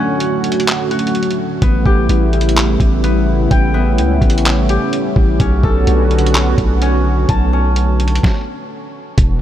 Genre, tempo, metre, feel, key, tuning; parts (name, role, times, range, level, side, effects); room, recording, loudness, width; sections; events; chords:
hip hop, atmospheric cloud-rap; 127 BPM; 4/4; half-time; A4 = 441 Hz
dark analog pad; sustained chords; 0.0-9.4 s; C#3 to F#4; -18 LUFS; right 1 dB; chorus, sidechain pumping
concert harp; arpeggios; 0.0-9.4 s; B3 to A5; -21 LUFS; left 3 dB; digital delay
lo-fi sampler-style drum kit; drums; 0.2-9.3 s; handclaps, hi-hat, kick drum, snare drum; -16 LUFS; equal; overdrive
long sustained 808-style bass; bass; 1.6-9.4 s; E1 to C#2; -14 LUFS; equal
little or no reverb; -12 LUFS; side -11 dB against mid
0.0-9.2 A section
break 0.0-1.6; stop 8.2-9.2
0.0 Dmaj7; 1.6 A9; 5.4 Bm9